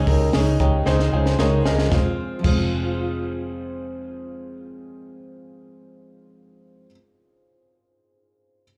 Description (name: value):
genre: jangly indie pop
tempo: 114 BPM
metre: 4/4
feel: straight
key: F minor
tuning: A4 = 440 Hz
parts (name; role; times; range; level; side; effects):
- fingerpicked steel-string acoustic guitar; accompaniment; 0.0-7.0 s; Db3 to F4; -31 LUFS; equal; none
- warm upright piano; accompaniment; 0.0-8.6 s; Eb4 to Bb5; -30 LUFS; equal; plate reverb, slapback echo
- electric guitar through a small old amp; arpeggios; 0.0-3.5 s; Eb4 to Bb4; -29 LUFS; equal; tape echo
- vintage muted fingered electric bass; bass; 0.0-6.9 s; F1 to Db2; -25 LUFS; equal; none
- compact cocktail drum kit; drums; 0.1-2.6 s; crash cymbal, hi-hat, kick drum, snare drum; -26 LUFS; equal; none
room: light reverb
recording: live gig heard through the venue's PA, club ambience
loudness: -21 LUFS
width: mono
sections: 0.0-1.9 A section; 1.9-6.1 B section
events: upright piano fill 0.3-1.9; drum fill 0.9-1.9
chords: 0.0 Dbsus2; 1.9 Fm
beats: 0.34 0.87 1.39 | 1.92 2.44 2.97 3.50 | 4.02 4.55 5.08 5.60